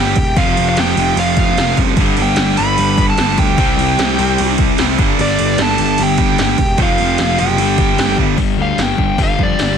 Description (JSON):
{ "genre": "hard rock", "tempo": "150 BPM", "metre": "4/4", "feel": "straight", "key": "unclear", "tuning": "A4 = 440 Hz", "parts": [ { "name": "dark smooth lead guitar", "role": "melody", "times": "0.0-9.8 s", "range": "D5 to B5", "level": "-19 LUFS", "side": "equal", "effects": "overdrive" }, { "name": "biting lead guitar", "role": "second line", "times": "0.0-8.2 s", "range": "D4 to B4", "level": "-26 LUFS", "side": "right 5 dB", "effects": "overdrive" }, { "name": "distorted electric guitar", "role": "riff", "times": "0.0-8.4 s", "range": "F2 to C4", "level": "-18 LUFS", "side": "right 15 dB", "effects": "overdrive" }, { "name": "overdriven semi-hollow guitar", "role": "riff", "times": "0.0-9.8 s", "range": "F2 to C4", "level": "-19 LUFS", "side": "left 13 dB", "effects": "none" }, { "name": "fuzz picked electric bass", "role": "bass", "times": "0.0-9.7 s", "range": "E1 to F2", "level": "-20 LUFS", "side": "equal", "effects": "overdrive" }, { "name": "80s electronic pad drums", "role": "drums", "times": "0.2-9.7 s", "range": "crash cymbal, hi-hat, kick drum, snare drum", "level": "-18 LUFS", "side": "equal", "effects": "none" } ], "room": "light reverb", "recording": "dense, heavily limited modern master", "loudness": "-12 LUFS", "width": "side -7 dB against mid", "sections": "0.0-8.4 A section; 8.4-9.8 B section", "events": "drum fill 8.2; lead electric guitar solo 8.4-9.8", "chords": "0.4 F5; 2.0 G; 3.6 C5; 5.0 G5; 6.8 F5; 7.6 G5" }